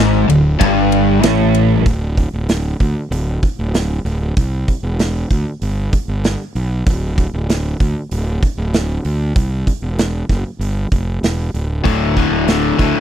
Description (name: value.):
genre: classic rock.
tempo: 96 BPM.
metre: 4/4.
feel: straight.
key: unclear.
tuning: A4 = 441 Hz.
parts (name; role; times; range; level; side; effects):
distorted electric guitar; riff; 0.0-1.8, 11.8-13.0 s; D2 to D3; -17 LUFS; right 12 dB; distortion.
overdriven electric guitar; riff; 0.0-1.8, 11.8-13.0 s; D2 to D3; -15 LUFS; left 10 dB; none.
fuzz fingered electric bass; bass; 0.0-12.9 s; D1 to D2; -18 LUFS; right 1 dB; overdrive.
big rock drum kit; drums; 0.3-12.9 s; hi-hat, kick drum, ride cymbal, snare drum; -17 LUFS; right 1 dB; none.
room: little or no reverb.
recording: dry, close 1970s-style studio recording.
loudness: -14 LUFS.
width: side -10 dB against mid.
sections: 0.0-1.9 A section; 1.9-13.0 B section.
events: none.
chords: 0.0 D5; 1.9 N.C.; 4.4 C; 5.6 G; 6.9 N.C.; 9.4 C; 10.6 G5; 11.9 D5.